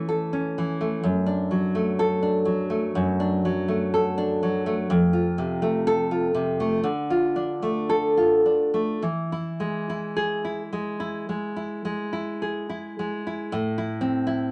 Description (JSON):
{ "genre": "romantic piece for solo classical guitar", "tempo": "51-64 BPM", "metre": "4/4", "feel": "rubato", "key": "unclear", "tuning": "A4 = 441 Hz", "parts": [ { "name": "nylon-string guitar", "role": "solo", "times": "0.0-14.5 s", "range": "F2 to A4", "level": "-25 LUFS", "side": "equal", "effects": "none" } ], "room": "light reverb", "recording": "none", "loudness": "-25 LUFS", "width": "mono", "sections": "0.0-13.5 A section", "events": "none", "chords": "0.0 A; 1.0 D/F#; 4.9 F; 6.9 Dm; 9.0 E; 13.5 Am", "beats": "0.08 | 1.04 1.99 2.96 3.94 | 4.91 5.88 6.86 7.90 | 9.02 10.17 11.29 12.42 | 13.52 14.51" }